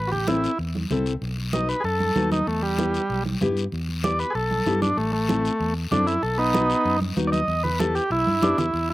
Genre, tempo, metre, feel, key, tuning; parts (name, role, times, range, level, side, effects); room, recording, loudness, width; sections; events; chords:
latin, cumbia; 192 BPM; 4/4; straight; E harmonic minor; A4 = 441 Hz
combo organ; melody; 0.0-8.9 s; G3 to D#5; -23 LUFS; right 1 dB
fingered electric bass; bass; 0.0-8.9 s; A1 to G2; -28 LUFS; equal
congas; percussion; 0.1-8.9 s; -28 LUFS; right 2 dB
nylon-string guitar; accompaniment; 0.3-8.6 s; B3 to A4; -27 LUFS; left 3 dB
guiro; percussion; 0.3-8.9 s; -37 LUFS; left 5 dB
little or no reverb; recorded outdoors, with no room sound; -21 LUFS; side -17 dB against mid
0.0-8.7 A section
transistor combo organ solo 0.0-8.7; drum fill 8.3-8.7
0.0 Am; 1.2 B7; 2.5 Em; 5.0 Am; 6.2 B; 7.5 Em